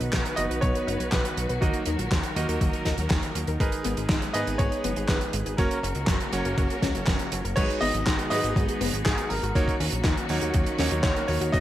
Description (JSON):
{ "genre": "italo disco", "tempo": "121 BPM", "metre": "4/4", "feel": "straight", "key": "G# minor", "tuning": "A4 = 440 Hz", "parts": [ { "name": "rich studio string section", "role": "sustained chords", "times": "0.0-11.6 s", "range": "B2 to B4", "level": "-33 LUFS", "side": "left 1 dB", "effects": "none" }, { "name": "analog pluck", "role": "arpeggios", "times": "0.0-11.6 s", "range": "F#3 to B4", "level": "-34 LUFS", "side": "left 3 dB", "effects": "chorus, tape echo" }, { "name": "bright electric grand piano", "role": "stabs", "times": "0.0-11.6 s", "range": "G#3 to D#5", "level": "-32 LUFS", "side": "right 3 dB", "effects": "low-pass filter" }, { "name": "fat analog bass", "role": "bass", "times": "0.0-11.6 s", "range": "F#1 to G#2", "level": "-30 LUFS", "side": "equal", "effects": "tube saturation" }, { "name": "damped 70s drum kit", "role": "drums", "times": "0.0-11.6 s", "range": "crash cymbal, handclaps, hi-hat, snare drum", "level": "-30 LUFS", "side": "right 1 dB", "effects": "gated reverb" }, { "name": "electronic kick drum", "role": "drums", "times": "0.1-11.6 s", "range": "none", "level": "-27 LUFS", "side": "equal", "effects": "overdrive" }, { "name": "clear baby grand piano", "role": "melody", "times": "0.4-11.6 s", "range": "F#4 to D#5", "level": "-31 LUFS", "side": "equal", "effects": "vintage 12-bit sampler grit, tape echo" } ], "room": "light reverb", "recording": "none", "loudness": "-23 LUFS", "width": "side -13 dB against mid", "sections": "0.0-7.6 A section; 7.6-11.6 B section", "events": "none", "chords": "0.0 B; 1.6 D#m; 3.6 G#madd9; 5.6 F#; 7.6 G#m7; 9.6 D#m7" }